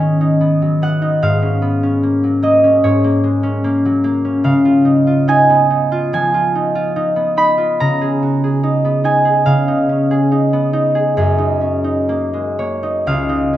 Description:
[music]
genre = classical, solo harp piece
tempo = 72 BPM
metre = 4/4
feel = uneven beats, rubato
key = unclear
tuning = A4 = 440 Hz
[part]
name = concert harp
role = solo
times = 0.0-13.6 s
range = Db2 to Cb6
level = -12 LUFS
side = equal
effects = none
[sound]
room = moderate recital hall reverb, RT60 1.3 s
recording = none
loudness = -13 LUFS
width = side -13 dB against mid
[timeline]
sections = 0.0-13.6 A section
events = none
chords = 0.0 Abm7; 1.2 Gbadd9/Ab; 4.5 Db9; 7.8 Abm6/Db; 11.2 Gb69; 13.1 Dbadd9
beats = 0.41 | 1.23 2.05 2.85 3.66 | 4.46 5.29 6.15 6.98 | 7.83 8.67 9.50 10.34 | 11.19 12.09 13.07

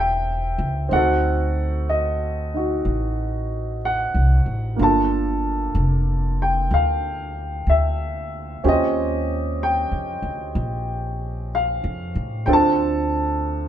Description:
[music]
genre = jazz ballad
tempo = 62 BPM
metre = 4/4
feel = swing 66% on 8ths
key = D minor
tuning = A4 = 440 Hz
[part]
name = warm baby grand piano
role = accompaniment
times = 0.0-13.7 s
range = Bb3 to A5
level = -22 LUFS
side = equal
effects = none
[part]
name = upright bass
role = bass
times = 0.0-13.7 s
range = E1 to A2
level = -23 LUFS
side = equal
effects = none
[sound]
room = moderate studio reverb, RT60 0.8 s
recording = minimal, uncompressed stereo recording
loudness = -19 LUFS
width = side -10 dB against mid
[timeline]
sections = 0.0-13.7 A section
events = none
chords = 0.0 Am7; 0.9 D7b9; 4.8 Gm9; 8.6 Eb13; 12.5 Dm7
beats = | 0.90 1.87 2.83 3.80 | 4.77 5.74 6.70 7.67 | 8.63 9.59 10.55 11.51 | 12.46 13.42

